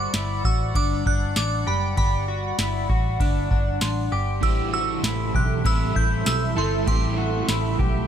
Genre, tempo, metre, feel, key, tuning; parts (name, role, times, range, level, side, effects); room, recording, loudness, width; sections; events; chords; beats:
dream pop; 98 BPM; 4/4; straight; A4 = 439 Hz
glassy synth bell; melody; 0.0-8.1 s; B5 to G6; -29 LUFS; right 4 dB; chorus, phaser, digital delay
warbly tape-like pad; sustained chords; 0.0-8.1 s; G3 to C6; -31 LUFS; right 2 dB; chorus, built-in reverb
electric guitar at the edge of break-up; arpeggios; 0.0-8.1 s; D4 to A4; -30 LUFS; left 5 dB; analog chorus, digital delay
vintage muted picked electric bass; bass; 0.0-8.1 s; F#1 to B1; -26 LUFS; equal
booming analog drum machine; drums; 0.1-8.0 s; kick drum, ride cymbal, snare drum, tambourine; -24 LUFS; equal
overdriven semi-hollow guitar; accompaniment; 4.4-8.1 s; A2 to E4; -28 LUFS; right 4 dB; tremolo, ensemble chorus
light reverb, digital ambience; faint mains hum; -20 LUFS; side -9 dB against mid
0.0-8.1 A section
0.0 Gmaj7; 4.4 Am7
0.14 0.75 1.36 | 1.97 2.59 3.20 3.81 | 4.42 5.04 5.65 6.26 | 6.87 7.49